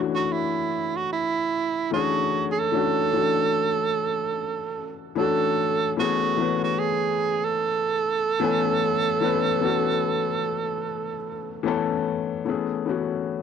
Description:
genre	R&B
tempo	74 BPM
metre	4/4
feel	swing 61% on 16ths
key	A major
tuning	A4 = 443 Hz
part	warm baby grand piano	accompaniment	0.0-13.4 s	E3 to G#5	-26 LUFS	left 9 dB	cassette tape
part	breathy tenor saxophone	melody	0.2-11.7 s	E4 to A4	-24 LUFS	right 7 dB	cassette tape
room	light reverb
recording	home recording on cassette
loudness	-22 LUFS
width	side -7 dB against mid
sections	0.0-12.5 A section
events	none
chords	0.0 Dmaj9; 6.0 Amaj9

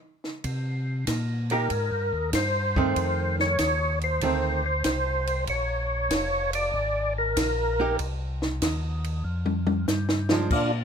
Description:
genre	soul jazz organ trio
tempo	95 BPM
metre	4/4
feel	swing 68% on 8ths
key	unclear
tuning	A4 = 441 Hz
part	compact cocktail drum kit	drums	0.2-10.7 s	crash cymbal, hi-hat, kick drum, ride cymbal, snare drum, toms	-29 LUFS	equal	none
part	tonewheel organ	bass	0.4-10.8 s	F1 to C3	-28 LUFS	equal	overdrive, slow rotary speaker
part	percussive tonewheel organ	melody	1.5-10.7 s	D4 to D5	-26 LUFS	left 1 dB	slow rotary speaker, overdrive, chorus vibrato
part	archtop guitar, miked and amplified	accompaniment	1.5-10.5 s	Eb3 to G4	-28 LUFS	right 6 dB	none
room	moderate club reverb, RT60 0.7 s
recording	none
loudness	-23 LUFS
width	side -7 dB against mid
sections	0.0-10.5 A section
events	tonewheel organ solo 0.0-10.5; drum fill 9.3-10.5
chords	0.4 Cm7; 3.0 F7; 5.5 Bb7; 8.0 Cm; 9.3 Fsus2

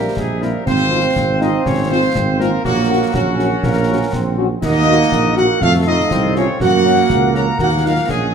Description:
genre	military-style march for wind band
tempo	121 BPM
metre	2/4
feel	straight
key	unclear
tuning	A4 = 440 Hz
part	dark trumpet section	melody	0.0-8.3 s	Gb4 to Bb5	-20 LUFS	left 2 dB	none
part	mellow woodwind section	second line	0.0-8.3 s	A4 to Gb5	-26 LUFS	equal	none
part	warm euphonium	second line	0.0-8.3 s	Gb3 to Bb4	-20 LUFS	right 5 dB	none
part	mellow trombone section	sustained chords	0.0-8.3 s	G3 to Db4	-22 LUFS	right 4 dB	none
part	dark tuba	bass	0.0-8.3 s	Ab1 to Gb2	-19 LUFS	right 2 dB	none
part	concert snare drum, concert bass drum and clash cymbals	drums	0.2-8.3 s	none	-24 LUFS	left 2 dB	none
part	mellow French horn section	accompaniment	0.4-7.9 s	Gb3 to Gb4	-24 LUFS	left 7 dB	none
room	moderate recital hall reverb, RT60 1.2 s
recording	none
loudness	-13 LUFS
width	side -7 dB against mid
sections	0.0-8.3 A section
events	none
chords	0.0 C7/Bb; 0.7 Fm/Ab; 2.6 Gb/Bb; 4.6 Ebm; 5.6 F7; 6.6 Gb; 7.6 Ebm

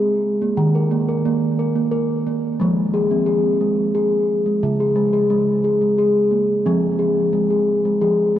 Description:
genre	world meditative, meditative tuned percussion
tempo	89 BPM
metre	3/4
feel	straight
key	F minor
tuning	A4 = 439 Hz
part	steel tongue drum	solo	0.0-8.4 s	Db3 to Bb4	-16 LUFS	equal	diffuse ambient delay
room	wet cathedral reverb, RT60 4.8 s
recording	worn, warbling old tape, cassette tape, warbly pitch drift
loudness	-16 LUFS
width	side -11 dB against mid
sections	0.0-6.7 A section; 6.7-8.4 B section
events	none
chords	0.0 N.C.; 0.6 Eb5; 2.6 Fm; 4.6 Db5; 6.7 Fm

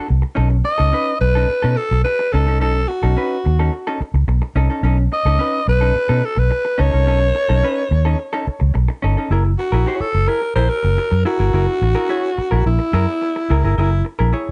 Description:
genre	funk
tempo	107 BPM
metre	4/4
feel	straight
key	unclear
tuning	A4 = 440 Hz
part	vintage hollow-body jazz guitar	accompaniment	0.0-14.5 s	C#4 to C#5	-26 LUFS	equal	none
part	vintage muted fingered electric bass	bass	0.1-14.5 s	F#1 to B2	-18 LUFS	equal	none
part	breathy alto saxophone	melody	0.7-14.0 s	E4 to D#5	-22 LUFS	equal	none
room	studio reverb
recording	nothing above 10.5 kHz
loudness	-18 LUFS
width	mono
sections	0.4-9.3 A section; 9.3-14.5 B section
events	alto saxophone solo 9.3-14.5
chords	0.4 B9; 9.3 F#9

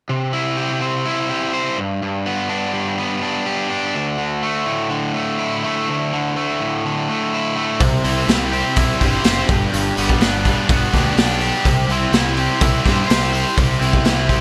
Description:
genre	classic rock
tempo	125 BPM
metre	4/4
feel	straight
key	unclear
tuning	A4 = 439 Hz
part	crunchy overdriven guitar	riff	0.1-14.4 s	D2 to C5	-22 LUFS	equal	none
part	tight distorted guitar	riff	7.8-14.4 s	G2 to C5	-24 LUFS	equal	distortion
part	fuzz picked electric bass	bass	7.8-14.4 s	F#1 to G2	-24 LUFS	equal	overdrive
part	raw garage drum kit	drums	7.8-14.4 s	hi-hat, kick drum, snare drum	-20 LUFS	equal	none
room	little or no reverb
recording	none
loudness	-18 LUFS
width	mono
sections	0.1-14.4 A section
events	none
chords	0.1 C; 1.8 G; 4.0 Dsus2; 7.8 C; 9.5 G; 11.7 C

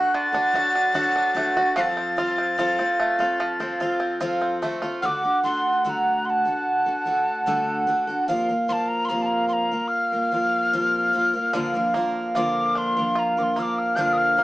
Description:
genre	acoustic folk duo or small band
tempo	74 BPM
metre	4/4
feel	straight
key	unclear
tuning	A4 = 440 Hz
part	breathy mellow wooden whistle	melody	0.0-14.4 s	A5 to C7	-24 LUFS	left 2 dB	none
part	mellow accordion	second line	0.0-14.4 s	F5 to F#5	-24 LUFS	right 2 dB	none
part	picked steel-string acoustic guitar	accompaniment	0.0-14.4 s	Bb2 to Bb4	-28 LUFS	left 1 dB	none
part	bluegrass banjo	arpeggios	0.0-5.1, 11.5-14.4 s	D3 to F#4	-29 LUFS	right 2 dB	none
room	light reverb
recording	band playing live in one room, small speaker sound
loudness	-20 LUFS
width	side -17 dB against mid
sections	0.0-5.0 A section; 5.0-14.4 B section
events	tin whistle solo 5.0-14.4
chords	0.0 D; 1.8 F; 5.0 D; 8.3 Fsus4/C; 11.5 Bb

